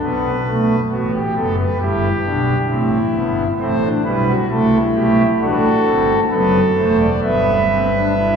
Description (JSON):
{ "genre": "classical, baroque-style 4-part fugue for pipe organ", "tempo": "67 BPM", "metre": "4/4", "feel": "straight", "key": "unclear", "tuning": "A4 = 444 Hz", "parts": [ { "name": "pipe organ, foundations", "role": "solo", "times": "0.0-8.4 s", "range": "E1 to E5", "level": "-14 LUFS", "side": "equal", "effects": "none" } ], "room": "wet cathedral reverb, RT60 4.7 s", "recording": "heard from further back in the room, small room ambience", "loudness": "-14 LUFS", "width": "side -6 dB against mid", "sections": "0.0-8.4 A section", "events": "none", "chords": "0.0 B5; 1.8 Em/G; 3.6 Am; 5.4 F#dim; 7.2 Em/G", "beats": "| 0.02 0.92 1.82 2.72 | 3.61 4.50 5.40 6.31 | 7.23 8.16" }